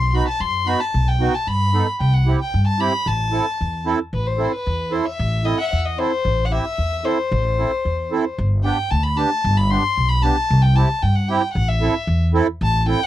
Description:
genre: klezmer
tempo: 113 BPM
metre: 2/4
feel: straight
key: A minor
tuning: A4 = 440 Hz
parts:
  - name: rich violin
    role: melody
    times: 0.0-13.1 s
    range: B4 to C6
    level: -22 LUFS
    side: left 2 dB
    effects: none
  - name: upright bass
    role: bass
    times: 0.0-12.9 s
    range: G1 to G2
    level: -19 LUFS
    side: equal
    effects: none
  - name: accordion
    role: accompaniment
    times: 0.1-13.0 s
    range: B3 to A4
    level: -21 LUFS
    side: right 5 dB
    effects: light tremolo tuning
room: little or no reverb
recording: dry, close 1970s-style studio recording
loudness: -17 LUFS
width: side -13 dB against mid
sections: 0.0-4.1 A section; 4.1-12.6 B section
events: violin solo 4.1-12.6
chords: 0.0 B; 2.0 C; 3.1 Am; 8.4 G; 10.5 C; 11.5 Am

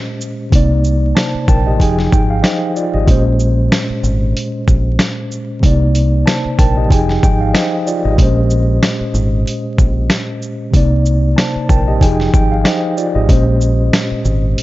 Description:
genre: hip hop, boom-bap hip-hop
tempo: 94 BPM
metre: 4/4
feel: swing 57% on 16ths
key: Bb dorian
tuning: A4 = 440 Hz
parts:
  - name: mellow tine electric piano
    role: accompaniment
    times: 0.0-14.6 s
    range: Bb2 to A5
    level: -17 LUFS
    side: equal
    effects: medium stereo tremolo, cassette tape, high-pass filter, low-pass filter
  - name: dusty soul sampler-style drum kit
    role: drums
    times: 0.2-14.6 s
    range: hi-hat, kick drum, shaker, snare drum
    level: -14 LUFS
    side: equal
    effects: none
  - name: deep dub fingered electric bass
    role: bass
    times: 0.5-14.5 s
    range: F1 to C2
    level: -15 LUFS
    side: equal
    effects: none
room: little or no reverb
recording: vinyl crackle, nothing above 7.6 kHz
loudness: -11 LUFS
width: side -17 dB against mid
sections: 0.0-14.6 A section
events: none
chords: 0.0 Bbm9; 0.5 Cm9; 1.8 Fm9; 3.1 Bbm9; 5.6 Cm9; 6.9 Fm9; 8.2 Bbm9; 10.7 Cm9; 12.0 Fm9; 13.3 Bbm9

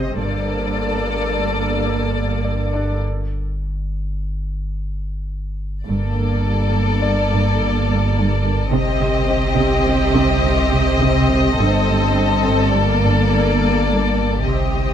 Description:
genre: cinematic, suspense film score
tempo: 105 BPM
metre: 5/4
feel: straight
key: G minor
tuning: A4 = 444 Hz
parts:
  - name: muted symphonic violin section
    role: melody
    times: 0.0-14.9 s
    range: D5 to Eb5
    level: -24 LUFS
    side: left 5 dB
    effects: none
  - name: muted symphonic viola section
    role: accompaniment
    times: 0.0-14.9 s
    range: Bb3 to A4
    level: -23 LUFS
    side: right 1 dB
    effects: none
  - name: muted symphonic cello section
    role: bass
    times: 0.0-14.9 s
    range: G2 to C3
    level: -23 LUFS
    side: right 2 dB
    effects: none
  - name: warm sub bass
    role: drone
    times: 0.0-14.9 s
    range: G1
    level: -24 LUFS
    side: equal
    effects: none
  - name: bright concert grand piano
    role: texture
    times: 0.0-11.6 s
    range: D4 to Eb5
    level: -31 LUFS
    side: left 2 dB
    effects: none
  - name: muted symphonic double bass section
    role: bass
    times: 0.2-0.7, 5.9-14.9 s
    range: G1 to C2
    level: -24 LUFS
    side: right 2 dB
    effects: none
  - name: muted symphonic violin section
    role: second line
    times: 5.9-14.9 s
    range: G4 to A4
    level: -24 LUFS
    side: left 3 dB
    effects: none
  - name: muted symphonic cello section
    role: riff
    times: 5.9-14.9 s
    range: G2 to C4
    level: -23 LUFS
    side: right 2 dB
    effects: none
room: light reverb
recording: close, detailed microphones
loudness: -16 LUFS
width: side -9 dB against mid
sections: 0.0-5.9 A section; 5.9-14.9 A section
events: break 3.0-5.9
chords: 0.2 Gmadd9; 3.0 N.C.; 5.9 Gmadd9; 8.7 Cm/G; 11.6 Gmadd9

